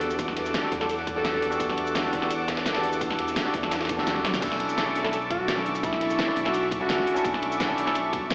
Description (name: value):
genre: liquid drum and bass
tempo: 170 BPM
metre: 4/4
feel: straight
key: B minor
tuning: A4 = 440 Hz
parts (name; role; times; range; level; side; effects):
- breathy alto saxophone; melody; 0.0-1.7, 5.0-7.3 s; E4 to A4; -33 LUFS; equal; digital delay
- overdriven tine electric piano; accompaniment; 0.0-8.0 s; C#4 to A4; -32 LUFS; equal; digital delay
- lush unison pad; sustained chords; 0.0-8.3 s; A4 to D6; -34 LUFS; equal; chorus, sidechain pumping
- smooth synth bass; bass; 0.0-8.3 s; B1 to E2; -37 LUFS; equal; none
- dusty soul sampler-style drum kit; drums; 0.0-8.3 s; hi-hat, snare drum; -36 LUFS; equal; high-pass filter on hats, high-pass filter on snare
- pop drum kit; drums; 0.0-8.3 s; crash cymbal, hi-hat, shaker, snare drum, toms; -34 LUFS; equal; none
- electronic kick drum; drums; 0.2-8.2 s; none; -38 LUFS; equal; none
room: wet scoring stage reverb, RT60 1.8 s, digital ambience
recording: played on a big sound system in a bare room, stone room reverb, AM radio sound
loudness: -26 LUFS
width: mono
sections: 0.0-4.4 A section; 4.4-8.3 A section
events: drop 0.0-4.4, 4.4-8.3; drum fill 3.7-4.4; kick drops out 4.1-4.4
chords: 0.0 Em11; 4.4 Bm11